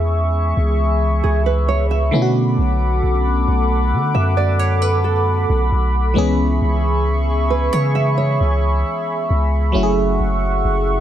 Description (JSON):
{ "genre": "R&B", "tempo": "67 BPM", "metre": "4/4", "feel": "straight", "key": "unclear", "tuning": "A4 = 441 Hz", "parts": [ { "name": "FM electric piano", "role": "accompaniment", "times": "0.0-11.0 s", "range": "D3 to G#4", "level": "-22 LUFS", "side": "left 1 dB", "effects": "chorus, phaser" }, { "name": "chorused pulse-width pad", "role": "sustained chords", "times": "0.0-11.0 s", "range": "F#4 to D6", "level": "-22 LUFS", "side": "equal", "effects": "none" }, { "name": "long sustained 808-style bass", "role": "bass", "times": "0.0-11.0 s", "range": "F#1 to D3", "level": "-17 LUFS", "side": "equal", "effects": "none" }, { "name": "nylon-string guitar", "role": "arpeggios", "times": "1.2-9.5 s", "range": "G#4 to E5", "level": "-24 LUFS", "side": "right 9 dB", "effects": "tape echo" } ], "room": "light reverb, digital ambience", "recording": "none", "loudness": "-15 LUFS", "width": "side -11 dB against mid", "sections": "0.0-11.0 A section", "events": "none", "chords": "0.0 C#m7; 2.1 Bm7; 6.2 C#m7; 9.7 F#m7" }